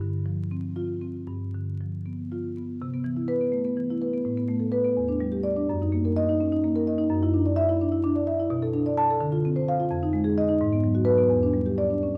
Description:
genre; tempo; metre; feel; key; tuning
classical, contemporary piece for solo marimba; 76-87 BPM (dotted quarters); 6/8; rubato; C lydian; A4 = 441 Hz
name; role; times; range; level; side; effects
marimba with soft mallets; solo; 0.0-12.2 s; E2 to A5; -25 LUFS; equal; none
room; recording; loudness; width
wet recital hall reverb, RT60 1.7 s; vinyl crackle; -25 LUFS; mono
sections
0.0-2.8 A section; 2.8-12.2 B section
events
none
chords
0.0 G7sus4; 1.3 G7; 2.8 Cmaj7; 4.3 Asus2; 5.0 Em7; 5.7 F#6; 7.1 Dadd9/F#; 8.5 Bm7; 9.2 Dm7; 9.9 Fm7; 10.6 G#m7; 11.3 Em7

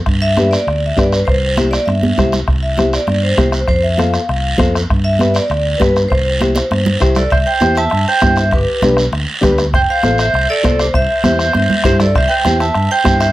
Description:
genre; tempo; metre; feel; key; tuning
latin, cumbia; 199 BPM; 4/4; straight; C major; A4 = 440 Hz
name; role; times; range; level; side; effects
fingered electric bass; bass; 0.1-13.3 s; F1 to G2; -18 LUFS; equal; none
bombo; percussion; 0.1-13.3 s; none; -18 LUFS; equal; none
guiro; percussion; 0.1-13.3 s; none; -24 LUFS; right 3 dB; none
vibraphone with medium mallets; melody; 0.2-13.3 s; B4 to A5; -17 LUFS; equal; none
nylon-string guitar; accompaniment; 0.4-13.3 s; D4 to C5; -17 LUFS; left 2 dB; none
congas; percussion; 0.4-13.2 s; none; -20 LUFS; right 2 dB; none
bright clarinet; second line; 7.2-13.3 s; G4 to E5; -19 LUFS; right 3 dB; slapback echo
room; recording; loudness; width
light reverb; none; -11 LUFS; side -16 dB against mid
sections
0.0-7.3 A section; 7.3-13.3 B section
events
drum fill 2.0-2.5, 6.6-7.3, 11.5-12.1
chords
0.1 G; 1.3 C; 3.7 F; 4.9 G; 6.1 C; 8.5 G; 9.7 F; 10.9 C

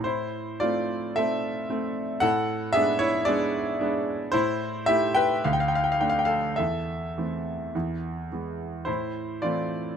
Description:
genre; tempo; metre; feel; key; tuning
classical, romantic nocturne for solo piano; 51-57 BPM; 4/4; rubato; A minor; A4 = 440 Hz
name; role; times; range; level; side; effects
clear concert grand piano; solo; 0.0-10.0 s; D2 to G5; -24 LUFS; equal; none
room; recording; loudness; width
light reverb; close, detailed microphones; -24 LUFS; side -7 dB against mid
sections
0.0-10.0 A section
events
none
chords
0.0 Am; 2.2 G#dim/A; 4.3 Am; 5.4 D5; 6.6 Am/E; 7.7 E; 8.9 Am

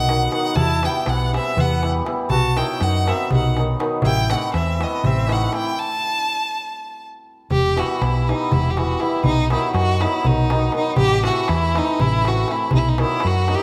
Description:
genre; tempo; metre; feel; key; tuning
balkan folk, Balkan wedding band; 242 BPM (eighths); 7/8; straight; A dorian sharp4; A4 = 441 Hz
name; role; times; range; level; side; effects
rich violin; melody; 0.0-13.6 s; D#4 to A5; -25 LUFS; equal; none
dark trumpet; second line; 0.0-5.8, 13.5-13.6 s; B3 to F#4; -31 LUFS; equal; none
hammered dulcimer; accompaniment; 0.0-13.6 s; D#3 to E4; -27 LUFS; equal; none
hollow-body short-scale fingered electric bass; bass; 0.0-13.5 s; E1 to F#2; -24 LUFS; equal; none
darbuka; percussion; 0.1-13.6 s; none; -26 LUFS; equal; none
room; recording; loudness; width
moderate recital hall reverb, RT60 1.6 s; none; -20 LUFS; mono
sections
0.0-7.5 A section; 7.5-13.6 A section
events
stop 5.8-7.5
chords
0.0 B; 0.6 Em; 2.3 B; 4.0 Am; 5.8 N.C.; 7.5 Em; 9.2 B; 11.0 Am; 12.7 B

